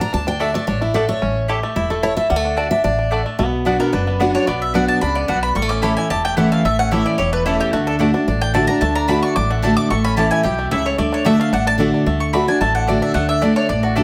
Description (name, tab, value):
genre	bluegrass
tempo	221 BPM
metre	4/4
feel	straight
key	D major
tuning	A4 = 440 Hz
part	picked steel-string acoustic guitar	accompaniment	0.0-14.0 s	E2 to Bb5	-21 LUFS	equal	none
part	bluegrass banjo	arpeggios	0.0-14.0 s	G3 to G4	-27 LUFS	equal	none
part	upright bass	bass	0.1-14.0 s	E1 to D2	-26 LUFS	equal	none
part	mandolin	stabs	0.4-14.0 s	A3 to A5	-27 LUFS	equal	none
part	mandolin	melody	3.8-14.0 s	F#4 to D6	-24 LUFS	equal	plate reverb
room	light reverb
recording	none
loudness	-18 LUFS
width	mono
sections	0.0-3.4 A section; 3.4-12.1 A section; 12.1-14.0 B section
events	steel-string acoustic guitar solo 0.0-3.4; mandolin solo 3.4-12.1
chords	0.0 D; 1.2 A; 2.3 D; 3.4 Bm; 5.6 A; 7.7 D; 9.9 A; 11.0 D